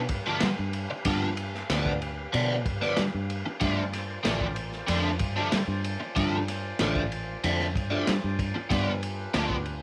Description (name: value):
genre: psychedelic rock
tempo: 94 BPM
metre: 4/4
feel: straight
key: G mixolydian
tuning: A4 = 440 Hz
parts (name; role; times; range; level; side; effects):
- percussive tonewheel organ; sustained chords; 0.0-9.8 s; F4 to F5; -42 LUFS; equal; slow rotary speaker
- fingered electric bass; bass; 0.0-9.8 s; A1 to G3; -33 LUFS; equal; none
- crunchy breakbeat drum kit; drums; 0.1-9.8 s; kick drum, ride cymbal, snare drum; -34 LUFS; equal; none
- overdriven electric guitar; riff; 0.3-9.6 s; D3 to D4; -32 LUFS; equal; flanger
room: studio reverb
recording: none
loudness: -28 LUFS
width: mono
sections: 0.0-9.8 A section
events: none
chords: 0.0 G7; 3.6 Dm7; 8.7 G7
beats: 0.42 | 1.06 1.70 2.34 2.98 | 3.62 4.25 4.89 5.53 | 6.17 6.80 7.44 8.08 | 8.71 9.35